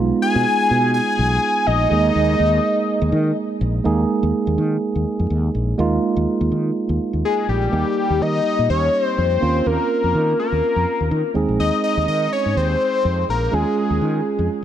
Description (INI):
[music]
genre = 1980s-style pop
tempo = 124 BPM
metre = 4/4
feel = swing 55% on 16ths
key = Eb mixolydian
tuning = A4 = 440 Hz
[part]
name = tine electric piano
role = accompaniment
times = 0.0-14.6 s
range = G3 to Ab4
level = -22 LUFS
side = right 4 dB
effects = none
[part]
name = fretless electric bass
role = bass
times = 0.0-14.5 s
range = Bb1 to Eb3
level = -20 LUFS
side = equal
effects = none
[part]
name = fat analog lead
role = melody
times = 0.2-3.4, 7.2-14.5 s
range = G4 to Ab5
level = -19 LUFS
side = left 2 dB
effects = phaser
[sound]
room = moderate lush hall reverb, RT60 3.2 s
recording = none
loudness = -17 LUFS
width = side -10 dB against mid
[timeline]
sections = 0.0-3.9 A section; 3.9-7.7 B section; 7.7-14.6 C section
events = none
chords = 0.0 Abm6/Cb; 1.9 Ebsus4; 7.7 Eb; 9.4 Bbmadd9/Eb; 11.4 Ab; 13.5 Db/Eb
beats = 0.47 0.95 1.43 | 1.92 2.40 2.88 3.37 | 3.85 4.34 4.82 5.30 | 5.79 6.27 6.75 7.24 | 7.72 8.21 8.69 9.17 | 9.66 10.14 10.63 11.11 | 11.59 12.08 12.56 13.04 | 13.53 14.01 14.50